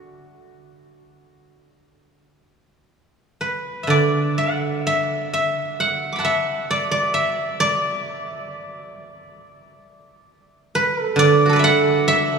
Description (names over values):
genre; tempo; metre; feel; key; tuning
chinese traditional, Chinese solo plucked strings; 58-70 BPM; 4/4; rubato; unclear; A4 = 438 Hz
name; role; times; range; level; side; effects
guzheng; solo; 0.0-12.4 s; D3 to D6; -18 LUFS; right 2 dB; none
room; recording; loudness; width
wet cathedral reverb, RT60 4.9 s; recorded in a church or concert hall, studio reverb; -17 LUFS; side -5 dB against mid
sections
0.0-3.9 A section; 3.9-12.4 B section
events
none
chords
none